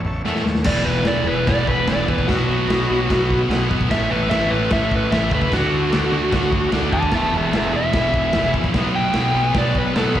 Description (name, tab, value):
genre	garage rock duo or trio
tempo	148 BPM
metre	4/4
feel	straight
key	E mixolydian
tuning	A4 = 440 Hz
part	fuzz picked electric bass	bass	0.0-10.2 s	E1 to E2	-24 LUFS	equal	overdrive, tube saturation
part	crunchy breakbeat drum kit	drums	0.0-10.2 s	crash cymbal, kick drum, snare drum, toms	-23 LUFS	equal	none
part	overdriven combo organ	sustained chords	0.1-10.2 s	F#3 to F#5	-31 LUFS	equal	none
part	thick fuzz guitar	riff	0.2-10.2 s	E2 to D4	-22 LUFS	equal	distortion
part	overdriven slide guitar	melody	0.7-10.2 s	F#4 to A5	-21 LUFS	right 1 dB	slapback echo, tape echo
room	light reverb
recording	live gig heard through the venue's PA, recital hall reverb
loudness	-16 LUFS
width	side -11 dB against mid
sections	0.7-10.2 A section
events	drum fill 0.3-0.7; electric slide guitar solo 0.7-10.2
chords	0.0 A; 0.7 E; 2.3 B; 3.9 A; 5.5 D; 7.1 E; 8.7 B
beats	0.26 | 0.66 1.07 1.48 1.88 | 2.29 2.69 3.10 3.50 | 3.90 4.31 4.71 5.11 | 5.52 5.92 6.32 6.73 | 7.13 7.53 7.94 8.34 | 8.74 9.15 9.55 9.96